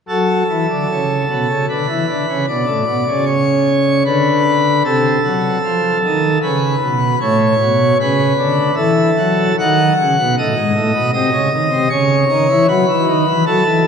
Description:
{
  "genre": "classical, chorale-style piece for pipe organ",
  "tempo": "76 BPM",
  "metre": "3/4",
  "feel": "rubato",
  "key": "F# minor, C# minor from 9.6 s",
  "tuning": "A4 = 440 Hz",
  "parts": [
    { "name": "pipe organ, plenum", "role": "solo", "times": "0.1-13.9 s", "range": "G#2 to F#5", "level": "-13 LUFS", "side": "equal", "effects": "none" }
  ],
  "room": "wet church reverb, RT60 3.3 s",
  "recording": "none",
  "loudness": "-13 LUFS",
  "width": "side -6 dB against mid",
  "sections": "0.1-13.9 A section",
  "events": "none",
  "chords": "0.1 F#m; 1.7 Bm/D; 2.5 Aadd11; 4.9 Cdim7; 6.4 Bsus2; 7.2 F#m/A; 9.6 D#dim; 11.1 Cm; 11.9 C#m"
}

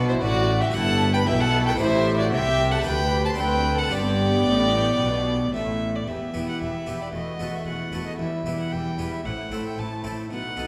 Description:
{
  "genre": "classical, baroque-style concerto movement with solo episodes",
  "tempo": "113 BPM",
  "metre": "4/4",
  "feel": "straight",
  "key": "G major, E minor from 6.1 s",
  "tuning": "A4 = 439 Hz",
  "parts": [
    { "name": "rich chamber violin section", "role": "melody", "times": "0.0-10.7 s", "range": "B4 to C6", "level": "-36 LUFS", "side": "equal", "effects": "none" },
    { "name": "warm violin", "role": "melody", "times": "0.0-10.7 s", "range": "B4 to A5", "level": "-29 LUFS", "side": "equal", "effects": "none" },
    { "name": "dark studio violin section", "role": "second line", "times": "0.0-10.7 s", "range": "D#4 to C5", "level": "-33 LUFS", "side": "equal", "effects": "none" },
    { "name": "harpsichord", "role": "accompaniment", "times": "0.0-10.7 s", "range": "D2 to A4", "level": "-35 LUFS", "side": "equal", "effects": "none" },
    { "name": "rich chamber viola section", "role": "accompaniment", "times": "0.0-10.7 s", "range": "G3 to G4", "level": "-34 LUFS", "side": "equal", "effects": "none" },
    { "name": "warm chamber cello section", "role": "bass", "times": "0.0-10.7 s", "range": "D2 to C3", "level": "-32 LUFS", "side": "equal", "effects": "none" },
    { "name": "warm chamber double bass section", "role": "bass", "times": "0.0-10.7 s", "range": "E1 to D2", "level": "-30 LUFS", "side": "equal", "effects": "none" }
  ],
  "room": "wet recital hall reverb, RT60 1.4 s",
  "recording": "none",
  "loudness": "-24 LUFS",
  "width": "mono",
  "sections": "0.0-6.1 A section; 6.1-10.7 B section",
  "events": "none",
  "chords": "0.0 B5; 0.7 Em/G; 1.8 Am7; 2.9 G/D; 3.4 D7; 3.9 G; 6.1 Em; 7.1 B5/E; 8.2 Em; 9.3 Am"
}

